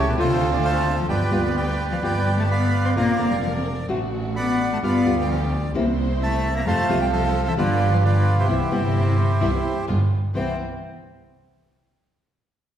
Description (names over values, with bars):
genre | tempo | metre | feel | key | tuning
tango | 130 BPM | 4/4 | rubato | C major | A4 = 442 Hz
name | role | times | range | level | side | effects
bandoneon | melody | 0.0-10.6 s | E4 to C6 | -24 LUFS | right 2 dB | none
warm cello | second line | 0.0-10.6 s | B2 to C4 | -26 LUFS | left 3 dB | none
dark chamber string section | stabs | 0.0-10.5 s | G3 to C5 | -32 LUFS | right 2 dB | none
clear double bass | bass | 0.0-10.5 s | F1 to F2 | -23 LUFS | right 1 dB | none
nylon-string guitar | accompaniment | 0.2-10.5 s | C3 to F#4 | -27 LUFS | left 1 dB | none
room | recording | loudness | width
wet recital hall reverb, RT60 1.5 s | recorded in a church or concert hall | -19 LUFS | side -10 dB against mid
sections
0.0-10.3 A section; 10.3-12.2 B section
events
none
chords
0.2 Dm7; 1.1 G7; 3.0 Bbadd9; 3.9 D/A; 4.8 G7; 5.7 C7; 6.7 F; 7.6 G7; 8.5 Cmaj7; 9.9 G7; 10.3 Cmaj7